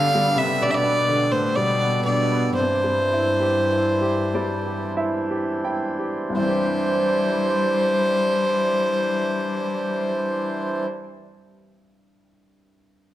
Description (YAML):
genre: celtic folk, Celtic slow air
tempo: 40-66 BPM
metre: 3/4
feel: rubato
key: C major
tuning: A4 = 439 Hz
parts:
  - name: rich fiddle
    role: melody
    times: 0.0-10.8 s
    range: C5 to F5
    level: -22 LUFS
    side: equal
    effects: none
  - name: rich cello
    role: second line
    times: 0.0-10.8 s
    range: G2 to G3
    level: -27 LUFS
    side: left 4 dB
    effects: none
  - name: bright upright piano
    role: accompaniment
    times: 0.0-13.1 s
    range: C2 to G5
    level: -26 LUFS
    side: equal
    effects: none
  - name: hand-pumped harmonium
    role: sustained chords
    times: 0.0-10.9 s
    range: E3 to C5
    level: -27 LUFS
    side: right 2 dB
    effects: none
room: moderate recital hall reverb, RT60 1.4 s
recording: none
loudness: -19 LUFS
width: side -13 dB against mid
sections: 0.0-6.4 A section; 6.4-10.7 B section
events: slowing down 0.0-6.4; upright piano fill 3.7-6.4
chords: 0.0 Gadd9; 2.6 Cadd9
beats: 0.61 1.56 | 2.57 3.70 4.96 | 6.37 7.82 9.23